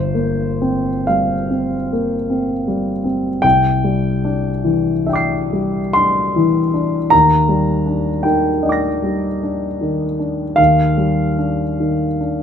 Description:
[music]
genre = classical, impressionist solo piano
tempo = 42-55 BPM (dotted quarters)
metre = 9/8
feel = rubato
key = unclear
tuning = A4 = 437 Hz
[part]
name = warm concert grand piano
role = solo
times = 0.0-12.4 s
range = G1 to C7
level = -15 LUFS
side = left 1 dB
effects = none
[sound]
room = light reverb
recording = minimal, uncompressed stereo recording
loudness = -15 LUFS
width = side -8 dB against mid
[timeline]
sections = 0.0-12.4 A section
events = none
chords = 0.0 Gm7; 3.4 Cadd9; 7.1 Ebmaj7

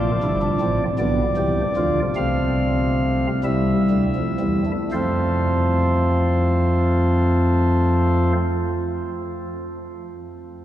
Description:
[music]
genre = classical, baroque-style 4-part fugue for pipe organ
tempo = 38-56 BPM (dotted quarters)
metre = 6/8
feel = straight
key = F major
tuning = A4 = 440 Hz
[part]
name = pipe organ, flutes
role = solo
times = 0.0-8.4 s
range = G1 to F5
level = -18 LUFS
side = equal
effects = none
[sound]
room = wet cathedral reverb, RT60 6.9 s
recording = heard from further back in the room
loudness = -18 LUFS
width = side -12 dB against mid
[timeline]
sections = 0.0-4.9 A section; 4.9-10.6 B section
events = slowing down 0.0-4.9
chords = 0.0 Gm7; 1.0 Bdim; 2.2 F/C; 3.4 C; 4.9 F

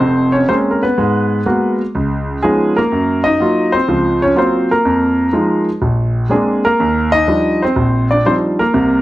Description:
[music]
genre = solo jazz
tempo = 124 BPM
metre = 4/4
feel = swing 69% on 8ths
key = unclear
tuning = A4 = 440 Hz
[part]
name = warm concert grand piano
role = solo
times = 0.0-9.0 s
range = F1 to Eb5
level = -12 LUFS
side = equal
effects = none
[sound]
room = wet studio reverb, RT60 0.7 s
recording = cassette tape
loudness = -12 LUFS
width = side -16 dB against mid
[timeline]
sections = 0.0-9.0 A section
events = none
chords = 0.0 Bbm9; 1.0 Abm9; 1.9 Db9; 2.9 Gbmaj7; 4.8 Fm7; 5.8 Bb9; 6.8 Ebmaj9

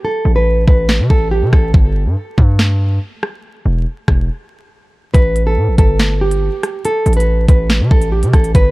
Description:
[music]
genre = hip hop, drill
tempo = 141 BPM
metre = 4/4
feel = half-time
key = A minor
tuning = A4 = 441 Hz
[part]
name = nylon-string guitar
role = melody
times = 0.0-1.7, 5.1-8.7 s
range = G4 to B4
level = -18 LUFS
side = right 1 dB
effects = digital delay
[part]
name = distorted 808-style bass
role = bass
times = 0.2-8.7 s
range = E1 to C3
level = -14 LUFS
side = equal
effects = distortion
[part]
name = drill drum kit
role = drums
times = 0.7-8.6 s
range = hi-hat, kick drum, rim click, snare drum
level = -12 LUFS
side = equal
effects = none
[sound]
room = little or no reverb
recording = dark, warm production, vinyl crackle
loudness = -11 LUFS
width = side -21 dB against mid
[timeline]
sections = 0.0-8.7 A section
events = break 0.0-5.1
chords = 0.0 Asus2; 1.7 N.C.; 5.1 Asus2

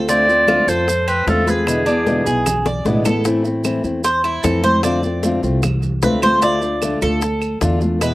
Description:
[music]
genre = latin, Cuban son and guajira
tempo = 151 BPM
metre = 4/4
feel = straight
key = A minor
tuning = A4 = 440 Hz
[part]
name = fingerpicked acoustic archtop guitar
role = accompaniment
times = 0.0-8.1 s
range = B2 to F4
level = -20 LUFS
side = left 2 dB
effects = slapback echo
[part]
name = Cuban tres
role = arpeggios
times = 0.0-8.1 s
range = C4 to D5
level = -20 LUFS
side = right 1 dB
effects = slapback echo
[part]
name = upright bass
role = bass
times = 0.0-8.1 s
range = A1 to F2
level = -22 LUFS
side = equal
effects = none
[part]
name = clear clarinet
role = melody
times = 0.1-2.9 s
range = G#4 to D5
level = -16 LUFS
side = equal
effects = slapback echo
[part]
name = bongos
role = percussion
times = 0.1-8.1 s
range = none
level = -25 LUFS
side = left 4 dB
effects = slapback echo
[part]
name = congas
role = percussion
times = 0.1-8.1 s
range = none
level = -25 LUFS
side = equal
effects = none
[part]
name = maracas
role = percussion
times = 0.1-8.1 s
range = none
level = -30 LUFS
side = right 6 dB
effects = none
[part]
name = claves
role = percussion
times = 0.5-8.1 s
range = none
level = -32 LUFS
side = right 5 dB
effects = none
[sound]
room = little or no reverb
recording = recorded outdoors, with no room sound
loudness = -15 LUFS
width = side -18 dB against mid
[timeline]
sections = 0.0-3.3 A section; 3.3-8.1 B section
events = drum fill 2.7-3.3; Cuban tres solo 3.3-8.1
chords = 0.1 Dm7; 1.7 E7; 3.3 Am; 4.8 F6; 6.4 Dm

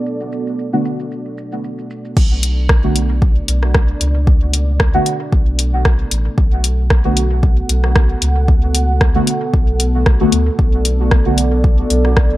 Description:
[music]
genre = dub techno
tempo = 114 BPM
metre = 4/4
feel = swing 55% on 16ths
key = B minor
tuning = A4 = 442 Hz
[part]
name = dark analog pad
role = sustained chords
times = 0.0-12.4 s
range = B3 to F#5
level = -23 LUFS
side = right 1 dB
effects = chorus, sidechain pumping
[part]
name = wind-like tuned noise texture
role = texture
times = 0.0-2.2 s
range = F#3 to F#4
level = -39 LUFS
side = right 2 dB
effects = none
[part]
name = deep house drum kit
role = drums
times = 0.1-12.3 s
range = crash cymbal, hi-hat, rim click, shaker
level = -20 LUFS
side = equal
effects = overdrive, low-pass filter on perc, low-pass filter on cymbals, low-pass filter on hats, low-pass filter on snare, low-pass filter on room
[part]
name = deep mellow chord stab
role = stabs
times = 0.7-11.4 s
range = D3 to F#4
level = -20 LUFS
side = equal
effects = chorus, phaser, sidechain pumping, dub echo
[part]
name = soft dub sub bass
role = bass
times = 2.2-12.4 s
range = A1 to D2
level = -16 LUFS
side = equal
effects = sidechain pumping
[part]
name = electronic kick drum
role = drums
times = 2.2-12.3 s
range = none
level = -13 LUFS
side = equal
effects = overdrive
[sound]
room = digital ambience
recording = echo-heavy mix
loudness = -12 LUFS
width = side -16 dB against mid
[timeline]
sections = 0.0-2.2 A section; 2.2-12.4 B section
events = none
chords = 0.0 Bm7

